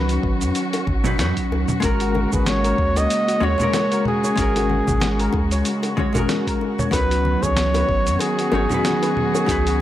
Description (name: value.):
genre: sunset chillout.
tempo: 94 BPM.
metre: 4/4.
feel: swing 56% on 16ths.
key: G# minor.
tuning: A4 = 441 Hz.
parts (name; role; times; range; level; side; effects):
warm flugelhorn; melody; 0.0-9.8 s; G#4 to D#5; -23 LUFS; equal; tape echo.
vintage hollow-body jazz guitar; accompaniment; 0.0-9.8 s; F#3 to C#5; -23 LUFS; left 1 dB; auto-pan.
muted chamber string section; sustained chords; 0.0-9.8 s; C#3 to F#4; -28 LUFS; left 1 dB; none.
warm sub bass; bass; 0.0-9.8 s; G#1 to F#2; -23 LUFS; equal; none.
dusty soul sampler-style drum kit; drums; 0.1-9.8 s; cabasa, congas, hi-hat, snare drum; -26 LUFS; right 1 dB; none.
electronic kick drum; drums; 0.2-9.6 s; none; -26 LUFS; equal; none.
bongos and congas; percussion; 0.4-9.5 s; none; -30 LUFS; left 3 dB; none.
steel pan; arpeggios; 2.0-9.8 s; F#4 to C#5; -32 LUFS; right 1 dB; tape echo.
room: small room ambience.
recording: dry, gritty hardware recording.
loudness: -17 LUFS.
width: side -12 dB against mid.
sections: 0.0-9.8 A section.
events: none.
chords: 0.0 C#9sus4; 1.8 G#9sus4; 6.9 C#9sus4.